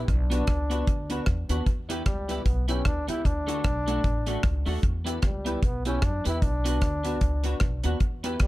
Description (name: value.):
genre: ska.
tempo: 151 BPM.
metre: 4/4.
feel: swing 58% on 8ths.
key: E dorian.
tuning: A4 = 439 Hz.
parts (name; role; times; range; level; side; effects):
clean electric guitar; accompaniment; 0.0-8.4 s; A3 to G4; -35 LUFS; right 3 dB; ensemble chorus, plate reverb.
dark upright piano; stabs; 0.0-8.4 s; A3 to B4; -35 LUFS; left 3 dB; dub echo, plate reverb.
upright bass; bass; 0.0-8.5 s; A1 to F#2; -29 LUFS; equal; none.
clear trombone; melody; 0.1-8.5 s; G3 to E4; -32 LUFS; equal; plate reverb.
deep reggae drum kit; drums; 0.1-8.5 s; hi-hat, kick drum, rim click; -26 LUFS; equal; none.
room: little or no reverb.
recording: none.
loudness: -24 LUFS.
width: side -17 dB against mid.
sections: 0.0-8.5 A section.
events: none.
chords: 0.1 Bm; 1.7 Em; 3.2 D; 4.8 Em; 6.4 Bm.